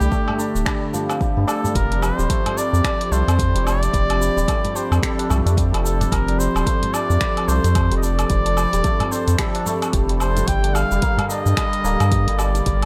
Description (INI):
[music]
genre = organic downtempo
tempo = 110 BPM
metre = 4/4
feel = swing 59% on 16ths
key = unclear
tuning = A4 = 441 Hz
[part]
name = trumpet with cup mute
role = melody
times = 0.0-12.9 s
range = G4 to G5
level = -27 LUFS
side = equal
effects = digital delay
[part]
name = warm analog pad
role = sustained chords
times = 0.0-12.9 s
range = D3 to Bb4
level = -29 LUFS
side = equal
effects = chorus, sidechain pumping
[part]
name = santur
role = arpeggios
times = 0.0-12.9 s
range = F3 to G4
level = -29 LUFS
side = equal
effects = digital delay
[part]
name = round analog bass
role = bass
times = 0.0-12.9 s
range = D1 to G2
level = -22 LUFS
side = equal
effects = tube saturation
[part]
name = deep house drum kit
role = drums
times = 0.0-12.9 s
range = cabasa, finger snaps, hi-hat, woodblock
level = -30 LUFS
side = equal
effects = none
[part]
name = electronic kick drum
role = drums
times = 0.1-12.8 s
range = none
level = -25 LUFS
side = equal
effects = none
[part]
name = tabla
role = percussion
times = 0.3-12.6 s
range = none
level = -32 LUFS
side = equal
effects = none
[sound]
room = light reverb, digital ambience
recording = none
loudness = -19 LUFS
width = mono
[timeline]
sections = 0.0-1.8 A section; 1.8-12.9 B section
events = none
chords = 0.0 D7sus4; 1.8 F; 10.5 Gm7